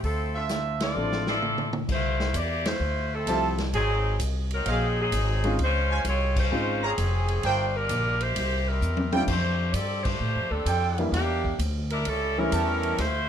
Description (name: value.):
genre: jazz, big band swing.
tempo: 130 BPM.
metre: 4/4.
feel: swing 67% on 8ths.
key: F major.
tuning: A4 = 440 Hz.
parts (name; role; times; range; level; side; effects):
bright saxophone section; melody; 0.0-13.3 s; E3 to D5; -28 LUFS; left 1 dB; none.
upright bass; bass; 0.0-13.3 s; F1 to A2; -28 LUFS; equal; none.
swinging big-band drum kit; drums; 0.0-13.1 s; crash cymbal, hi-hat, kick drum, ride cymbal, snare drum, toms; -33 LUFS; equal; none.
warm trumpet section; stabs; 0.3-13.0 s; D4 to Bb5; -30 LUFS; right 5 dB; none.
clear baby grand piano; accompaniment; 1.0-13.0 s; E3 to A4; -29 LUFS; left 1 dB; none.
room: light reverb.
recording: none.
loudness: -23 LUFS.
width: side -9 dB against mid.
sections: 0.0-1.9 A section; 1.9-13.3 B section.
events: band accent 0.7, 2.6, 6.3, 10.0; drum fill 1.0-1.9, 8.8-9.3.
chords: 0.0 Dm9; 1.9 Fmaj7; 3.7 Ab7; 5.6 Dbmaj7; 7.4 Gm7; 8.4 C7; 9.3 F69; 11.1 Em7b5; 12.1 A7.